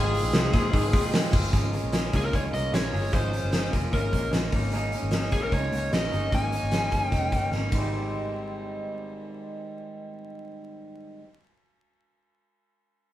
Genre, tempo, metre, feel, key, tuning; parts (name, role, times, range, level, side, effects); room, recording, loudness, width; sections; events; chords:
jangly indie pop; 150 BPM; 4/4; straight; Ab major; A4 = 437 Hz
biting lead guitar; melody; 0.0-7.5 s; Ab4 to Ab5; -30 LUFS; left 1 dB; overdrive
electric guitar through a small old amp; accompaniment; 0.0-11.3 s; Ab2 to C5; -32 LUFS; right 2 dB
electric guitar through a small old amp; arpeggios; 0.0-11.3 s; Eb3 to Ab4; -36 LUFS; left 3 dB
vintage muted picked electric bass; bass; 0.0-10.9 s; F1 to Bb2; -30 LUFS; equal
big rock drum kit; drums; 0.1-7.8 s; hi-hat, kick drum, ride cymbal, snare drum; -26 LUFS; equal
moderate studio ambience, RT60 0.5 s; band playing live in one room, vinyl crackle; -23 LUFS; side -13 dB against mid
0.0-1.5 A section; 1.5-7.9 B section; 7.9-11.1 C section
drum fill 7.5-7.9
0.0 Fm7/Ab; 1.5 Db6; 4.5 Eb7sus4/Ab; 7.7 Abmaj7